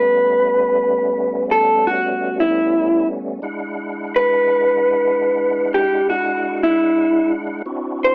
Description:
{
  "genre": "blues",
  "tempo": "57 BPM (dotted quarters)",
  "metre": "12/8",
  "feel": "straight",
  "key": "unclear",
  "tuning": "A4 = 437 Hz",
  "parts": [
    { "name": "electric guitar through a small old amp", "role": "melody", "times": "0.0-8.1 s", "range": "E4 to C5", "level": "-17 LUFS", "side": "equal", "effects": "cassette tape" },
    { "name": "tonewheel organ", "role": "sustained chords", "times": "0.0-8.1 s", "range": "G3 to F#5", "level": "-27 LUFS", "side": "equal", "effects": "slow rotary speaker, overdrive, chorus vibrato, cassette tape" }
  ],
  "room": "light reverb",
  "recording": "home recording on cassette, small speaker sound",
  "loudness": "-18 LUFS",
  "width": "mono",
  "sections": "0.0-8.1 A section",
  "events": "clean electric guitar solo 0.0-8.1",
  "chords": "0.0 A9; 3.4 E9",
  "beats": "0.25 1.31 2.37 | 3.43 4.49 5.54 6.60 | 7.66"
}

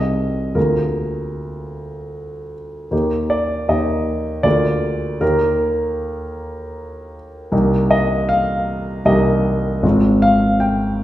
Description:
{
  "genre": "classical, romantic character piece for solo piano",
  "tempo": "78 BPM",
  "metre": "3/4",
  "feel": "rubato",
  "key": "Eb major",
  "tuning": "A4 = 440 Hz",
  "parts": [
    { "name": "warm concert grand piano", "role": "solo", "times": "0.0-11.0 s", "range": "Ab1 to G5", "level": "-16 LUFS", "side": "equal", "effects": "none" }
  ],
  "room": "wet recital hall reverb, RT60 1.4 s",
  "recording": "recorded in a church or concert hall",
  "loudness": "-15 LUFS",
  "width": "side -14 dB against mid",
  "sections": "0.0-11.0 A section",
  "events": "none",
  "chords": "0.0 Ab/C; 0.6 Bb7/D; 2.9 Eb; 4.5 Bb7/D; 5.2 Eb; 7.5 Cm7; 9.8 Fm/Ab",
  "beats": "| 0.56 1.34 2.13 | 2.92 3.69 4.45 | 5.21 5.99 6.76 | 7.52 8.29 9.05 | 9.83 10.61"
}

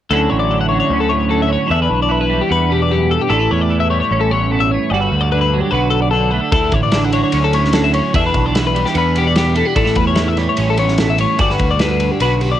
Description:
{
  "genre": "math rock and midwest emo",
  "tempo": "149 BPM",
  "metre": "4/4",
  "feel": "straight",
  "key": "D major",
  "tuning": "A4 = 440 Hz",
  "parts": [
    { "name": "twelve-string electric guitar", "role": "accompaniment", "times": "0.1-12.6 s", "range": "D2 to F#4", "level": "-18 LUFS", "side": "right 7 dB", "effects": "analog chorus, cassette tape" },
    { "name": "twelve-string electric guitar", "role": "arpeggios", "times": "0.1-12.6 s", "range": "G4 to F#5", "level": "-18 LUFS", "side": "left 7 dB", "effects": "cassette tape, tape echo" },
    { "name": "growling picked electric bass", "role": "bass", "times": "0.1-12.5 s", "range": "G1 to E2", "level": "-18 LUFS", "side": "equal", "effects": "overdrive" },
    { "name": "loose indie drum kit", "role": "drums", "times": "6.5-12.5 s", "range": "kick drum, ride cymbal, snare drum", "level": "-20 LUFS", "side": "equal", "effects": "cassette tape" }
  ],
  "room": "light reverb",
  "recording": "home recording on cassette",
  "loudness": "-13 LUFS",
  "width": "side -11 dB against mid",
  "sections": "0.1-12.6 A section",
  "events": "none",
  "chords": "0.1 Dmaj9; 1.7 Em7; 3.3 A7; 4.9 Gmaj7; 5.7 Bm7; 6.5 Dmaj9; 8.1 Em7; 9.8 A7; 11.4 Gmaj7; 12.2 Bm",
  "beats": "| 0.09 0.49 0.90 1.30 | 1.70 2.10 2.50 2.91 | 3.31 3.71 4.11 4.52 | 4.92 5.32 5.72 6.13 | 6.53 6.93 7.34 7.74 | 8.14 8.55 8.96 9.36 | 9.77 10.17 10.58 10.99 | 11.39 11.80 12.21"
}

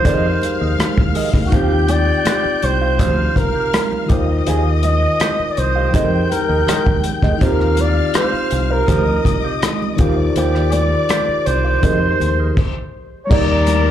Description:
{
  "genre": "lush 1970s-style soul",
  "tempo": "82 BPM",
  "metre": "4/4",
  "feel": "straight",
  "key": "Eb major",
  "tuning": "A4 = 440 Hz",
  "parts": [
    { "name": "warm flugelhorn", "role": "melody", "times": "0.0-13.9 s", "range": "Gb4 to Eb5", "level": "-20 LUFS", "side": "right 1 dB", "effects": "slapback echo" },
    { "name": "mellow tine electric piano", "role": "accompaniment", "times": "0.0-13.9 s", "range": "Eb3 to G5", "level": "-23 LUFS", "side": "left 3 dB", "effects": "medium stereo tremolo, slapback echo" },
    { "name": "mellow electric guitar", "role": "riff", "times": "0.0-13.9 s", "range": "G4 to F5", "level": "-26 LUFS", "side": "right 7 dB", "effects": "wah, slapback echo" },
    { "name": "warm studio string section", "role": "second line", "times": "0.1-13.9 s", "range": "Bb4 to G6", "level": "-26 LUFS", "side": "left 5 dB", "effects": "slapback echo, analog delay" },
    { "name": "fingered electric bass", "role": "bass", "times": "0.1-13.9 s", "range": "C2 to F2", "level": "-18 LUFS", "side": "equal", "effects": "none" },
    { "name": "warm soul drum kit", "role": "drums", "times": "0.1-13.8 s", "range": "crash cymbal, hi-hat, kick drum, rim click", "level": "-18 LUFS", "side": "equal", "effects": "none" },
    { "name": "congas", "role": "percussion", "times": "0.1-13.8 s", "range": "none", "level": "-28 LUFS", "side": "right 6 dB", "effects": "slapback echo" }
  ],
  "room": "studio reverb",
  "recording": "live gig heard through the venue's PA, club reverb",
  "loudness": "-14 LUFS",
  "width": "side -10 dB against mid",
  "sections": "0.0-13.3 A section",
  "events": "stop 12.6-13.3",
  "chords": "0.1 Fm11; 1.5 Eb69; 4.1 Cm11; 5.9 Fm11; 7.4 Eb69; 10.0 Cm11; 11.8 Fm11; 13.3 Ebmaj7",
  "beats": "0.05 0.79 | 1.52 2.26 3.00 3.73 | 4.47 5.21 5.94 6.68 | 7.42 8.15 8.89 9.63 | 10.36 11.10 11.84 12.57 | 13.31"
}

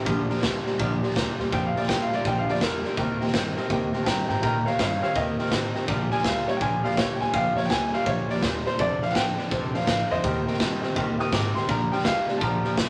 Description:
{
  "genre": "rockabilly",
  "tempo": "165 BPM",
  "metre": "4/4",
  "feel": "swing 63% on 8ths",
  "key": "Bb major",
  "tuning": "A4 = 437 Hz",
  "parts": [
    { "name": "honky-tonk upright piano", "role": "accompaniment", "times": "0.0-12.9 s", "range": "C5 to C6", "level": "-40 LUFS", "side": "equal", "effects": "none" },
    { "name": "picked acoustic archtop guitar", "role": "accompaniment", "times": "0.0-12.9 s", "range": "Bb2 to Bb4", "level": "-35 LUFS", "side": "equal", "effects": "none" },
    { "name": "electric guitar through a small old amp", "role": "riff", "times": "0.0-12.9 s", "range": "F2 to C4", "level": "-32 LUFS", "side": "equal", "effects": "harmonic tremolo" },
    { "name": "upright bass", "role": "bass", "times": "0.0-12.9 s", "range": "F1 to Bb2", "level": "-36 LUFS", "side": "equal", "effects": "none" },
    { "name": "raw garage drum kit", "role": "drums", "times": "0.1-12.9 s", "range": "hi-hat, kick drum, snare drum", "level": "-30 LUFS", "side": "equal", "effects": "none" },
    { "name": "warm upright piano", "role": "melody", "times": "1.5-12.9 s", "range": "Bb4 to Eb6", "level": "-30 LUFS", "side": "equal", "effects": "none" }
  ],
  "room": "moderate studio ambience, RT60 0.5 s",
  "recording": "none",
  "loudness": "-25 LUFS",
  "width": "mono",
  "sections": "0.0-12.9 A section",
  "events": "upright piano solo 0.0-12.9",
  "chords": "0.1 Bb6; 3.0 Eb6; 5.9 Bb6; 8.8 F6; 10.2 Eb6; 11.7 Bb6",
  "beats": "| 0.06 0.43 0.79 1.15 | 1.52 1.88 2.25 2.61 | 2.98 3.34 3.70 4.07 | 4.43 4.79 5.16 5.52 | 5.88 6.25 6.61 6.97 | 7.34 7.70 8.06 8.43 | 8.79 9.15 9.52 9.88 | 10.24 10.60 10.96 11.33 | 11.69 12.05 12.41 12.78"
}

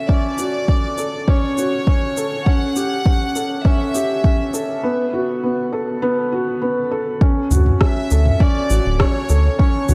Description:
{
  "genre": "piano and strings electronica",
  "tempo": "101 BPM",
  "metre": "4/4",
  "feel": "straight",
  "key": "D major",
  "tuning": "A4 = 440 Hz",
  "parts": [
    { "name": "bright chamber violin section", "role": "melody", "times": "0.0-9.9 s", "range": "C#5 to F#5", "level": "-27 LUFS", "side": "equal", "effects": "shimmer reverb" },
    { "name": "felt-muted upright piano", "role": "riff", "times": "0.0-9.9 s", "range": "B3 to A4", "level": "-23 LUFS", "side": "equal", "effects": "tape echo, shimmer reverb" },
    { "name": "electronic kick drum", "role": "drums", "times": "0.1-9.7 s", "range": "none", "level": "-18 LUFS", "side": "equal", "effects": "overdrive" },
    { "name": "round analog bass", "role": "bass", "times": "0.4-9.9 s", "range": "D1 to D2", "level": "-17 LUFS", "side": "equal", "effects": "sidechain pumping, high-pass filter" },
    { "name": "deep house drum kit", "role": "drums", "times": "0.4-9.9 s", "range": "rim click, shaker, toms", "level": "-24 LUFS", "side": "equal", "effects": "overdrive" }
  ],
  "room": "moderate lush hall reverb, RT60 1.8 s, digital ambience",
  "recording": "dark, warm production",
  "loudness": "-18 LUFS",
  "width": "mono",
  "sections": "0.0-7.2 A section; 7.2-9.9 B section",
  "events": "build-up 0.0-7.2; break 4.8-7.2; drop 7.2-9.9",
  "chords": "0.0 Dmaj7; 2.5 A7; 4.8 B5; 7.2 Dmaj7",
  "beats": "| 0.09 0.68 1.28 1.87 | 2.46 3.06 3.65 4.25 | 4.84 5.43 6.03 6.62 | 7.22 7.81 8.40 9.00 | 9.59"
}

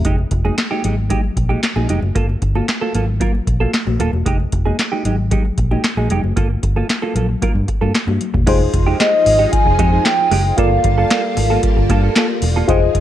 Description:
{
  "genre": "early-eighties boogie funk",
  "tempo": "114 BPM",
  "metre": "4/4",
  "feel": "straight",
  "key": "F dorian",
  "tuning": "A4 = 441 Hz",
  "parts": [
    { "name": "mellow FM electric piano", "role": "accompaniment", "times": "0.0, 8.5-13.0 s", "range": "Eb4 to Eb5", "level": "-21 LUFS", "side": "left 2 dB", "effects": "chorus, phaser" },
    { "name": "semi-hollow electric guitar", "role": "riff", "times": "0.0-13.0 s", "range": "Ab3 to Bb4", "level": "-23 LUFS", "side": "right 5 dB", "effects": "analog chorus" },
    { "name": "booming analog drum machine", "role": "drums", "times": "0.0-13.0 s", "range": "crash cymbal, handclaps, hi-hat, kick drum, snare drum", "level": "-19 LUFS", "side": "equal", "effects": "none" },
    { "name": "vintage muted fingered electric bass", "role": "bass", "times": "0.1-13.0 s", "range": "Eb1 to G2", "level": "-18 LUFS", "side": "equal", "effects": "none" },
    { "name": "congas", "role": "percussion", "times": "0.1-8.5 s", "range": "none", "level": "-25 LUFS", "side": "left 5 dB", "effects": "none" },
    { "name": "string machine, violins", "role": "sustained chords", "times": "8.5-13.0 s", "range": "F3 to A5", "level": "-24 LUFS", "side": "left 1 dB", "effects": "ensemble chorus" },
    { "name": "hollow clarinet-like synth lead", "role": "melody", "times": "9.0-12.1 s", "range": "Eb5 to Ab5", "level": "-16 LUFS", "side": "equal", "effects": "chorus, phaser" }
  ],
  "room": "light reverb",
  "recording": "none",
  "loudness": "-14 LUFS",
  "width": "side -12 dB against mid",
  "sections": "0.1-8.5 A section; 8.5-13.0 B section",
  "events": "none",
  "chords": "0.1 Fm9; 2.2 Gm9; 4.3 Fm9; 6.4 Gm9; 8.5 Fm9; 10.6 Gm9",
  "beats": "| 0.05 0.58 1.11 1.63 | 2.16 2.69 3.21 3.74 | 4.26 4.79 5.32 5.84 | 6.37 6.89 7.42 7.95 | 8.47 9.00 9.53 10.05 | 10.58 11.11 11.63 12.16 | 12.69"
}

